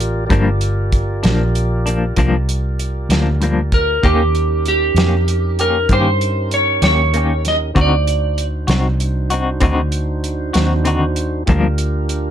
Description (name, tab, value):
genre	slow blues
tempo	64 BPM (dotted quarters)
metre	12/8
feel	straight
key	G minor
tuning	A4 = 439 Hz
part	tonewheel organ	sustained chords	0.0-12.3 s	Db4 to D5	-26 LUFS	right 2 dB	slow rotary speaker
part	vintage muted fingered electric bass	bass	0.0-12.3 s	G1 to G2	-18 LUFS	equal	none
part	warm soul drum kit	drums	0.0-12.2 s	hi-hat, kick drum, snare drum	-19 LUFS	equal	none
part	semi-hollow electric guitar	accompaniment	0.3-11.7 s	G2 to G4	-19 LUFS	left 4 dB	tremolo
part	clean lap steel guitar	melody	3.7-8.4 s	G4 to Eb5	-17 LUFS	right 2 dB	slapback echo
room	little or no reverb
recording	dark, warm production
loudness	-14 LUFS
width	side -10 dB against mid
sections	0.0-12.3 A section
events	none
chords	0.0 Gm7; 4.0 Eb7; 7.8 D7b9; 11.5 Gm7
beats	| 0.30 1.24 2.17 3.10 | 4.04 4.97 5.90 6.83 | 7.76 8.69 9.62 10.55 | 11.48